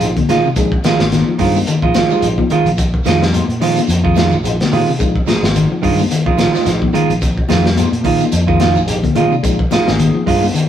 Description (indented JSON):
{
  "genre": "afrobeat",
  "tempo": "108 BPM",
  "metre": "4/4",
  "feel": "swing 56% on 16ths",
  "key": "unclear",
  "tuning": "A4 = 440 Hz",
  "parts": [
    { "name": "barky tine electric piano", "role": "accompaniment", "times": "0.0-10.2 s", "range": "Ab3 to Ab5", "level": "-24 LUFS", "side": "left 1 dB", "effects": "overdrive, phaser" },
    { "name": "electric guitar at the edge of break-up", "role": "arpeggios", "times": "0.0-10.7 s", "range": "C3 to Ab3", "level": "-20 LUFS", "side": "left 4 dB", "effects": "none" },
    { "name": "clean electric guitar", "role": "stabs", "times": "0.0-10.5 s", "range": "Eb3 to F4", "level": "-17 LUFS", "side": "right 5 dB", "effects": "none" },
    { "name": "fingered electric bass", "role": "bass", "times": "0.0-10.5 s", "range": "Ab1 to Bb2", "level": "-18 LUFS", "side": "equal", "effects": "none" },
    { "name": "crunchy breakbeat drum kit", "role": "drums", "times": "0.0-10.7 s", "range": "hi-hat, kick drum, snare drum", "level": "-18 LUFS", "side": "equal", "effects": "none" },
    { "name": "congas", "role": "percussion", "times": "0.0-10.5 s", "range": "none", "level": "-22 LUFS", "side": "left 8 dB", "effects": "none" },
    { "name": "shekere", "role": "percussion", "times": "0.0-10.7 s", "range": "none", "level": "-28 LUFS", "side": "left 1 dB", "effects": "none" }
  ],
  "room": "moderate stone room reverb, RT60 1.0 s",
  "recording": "rough rehearsal-room recording",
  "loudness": "-12 LUFS",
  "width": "side -10 dB against mid",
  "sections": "0.0-10.7 A section",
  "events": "tine electric piano fill 0.0-0.6, 8.3-9.4",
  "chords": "0.0 Bb7sus4"
}